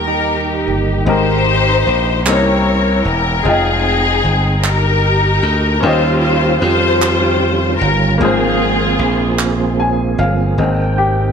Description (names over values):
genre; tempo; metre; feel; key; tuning
slow gospel; 50 BPM (dotted quarters); 6/8; straight; Ab major; A4 = 439 Hz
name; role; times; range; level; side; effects
dark studio string section; melody; 0.0-9.8 s; C4 to Db5; -16 LUFS; left 3 dB; none
clean electric guitar; second line; 0.0-1.0 s; Eb4 to G4; -23 LUFS; right 8 dB; phaser, slapback echo
clear grand piano; accompaniment; 0.0-11.3 s; Ab2 to Ab5; -20 LUFS; left 3 dB; none
tonewheel organ; sustained chords; 0.0-1.1, 5.8-11.3 s; Eb3 to G5; -20 LUFS; right 7 dB; slow rotary speaker, chorus vibrato
glassy slap bass; bass; 0.0-11.3 s; E1 to F2; -17 LUFS; right 1 dB; none
group handclap; percussion; 2.3-9.8 s; none; -20 LUFS; right 5 dB; none
room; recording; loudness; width
moderate large studio reverb, RT60 1.3 s; none; -12 LUFS; side -6 dB against mid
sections
0.0-1.1 A section; 1.1-10.6 B section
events
grand piano fill 9.4-10.6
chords
0.0 Eb; 1.1 Abmaj9; 2.3 C7b9; 3.5 Fm9; 5.8 Eb9; 8.2 Ab69; 10.6 Abmaj7